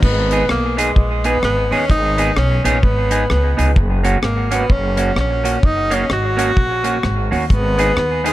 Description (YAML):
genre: ska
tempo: 128 BPM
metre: 4/4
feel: swing 61% on 8ths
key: G# minor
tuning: A4 = 440 Hz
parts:
  - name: warm tenor saxophone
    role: melody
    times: 0.0-8.3 s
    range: G#3 to F#4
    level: -20 LUFS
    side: equal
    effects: dub echo
  - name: upright bass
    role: bass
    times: 0.0-8.3 s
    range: F#1 to D#2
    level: -19 LUFS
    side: equal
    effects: tube saturation
  - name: deep reggae drum kit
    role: drums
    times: 0.0-8.3 s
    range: crash cymbal, hi-hat, kick drum, rim click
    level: -18 LUFS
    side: equal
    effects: none
  - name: clean electric guitar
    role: accompaniment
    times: 0.3-8.3 s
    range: A#3 to G#4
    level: -21 LUFS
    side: right 2 dB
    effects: dub echo
  - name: bright upright piano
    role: stabs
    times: 7.8-8.3 s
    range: B3 to B4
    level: -26 LUFS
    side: left 6 dB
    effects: none
room: light reverb, studio ambience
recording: none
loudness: -14 LUFS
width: side -15 dB against mid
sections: 0.0-8.3 A section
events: none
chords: 0.0 G#m; 3.8 F#; 7.5 G#m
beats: | 0.02 0.49 0.96 1.43 | 1.89 2.36 2.83 3.30 | 3.76 4.23 4.70 5.17 | 5.63 6.10 6.57 7.04 | 7.50 7.97